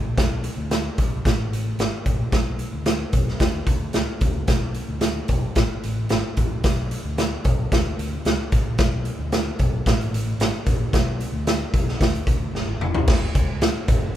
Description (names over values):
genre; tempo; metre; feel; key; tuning
uptempo 1960s-style soul; 112 BPM; 4/4; straight; B dorian; A4 = 440 Hz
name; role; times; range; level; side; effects
vintage muted fingered electric bass; bass; 0.0-14.1 s; F1 to D2; -27 LUFS; equal; none
raw garage drum kit; drums; 0.2-14.0 s; crash cymbal, hi-hat, kick drum, snare drum, toms; -21 LUFS; equal; none
room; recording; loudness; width
moderate small room reverb, RT60 0.6 s; band playing live in one room; -20 LUFS; side -12 dB against mid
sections
0.0-13.1 A section; 13.1-14.2 B section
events
drum fill 12.5-13.1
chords
none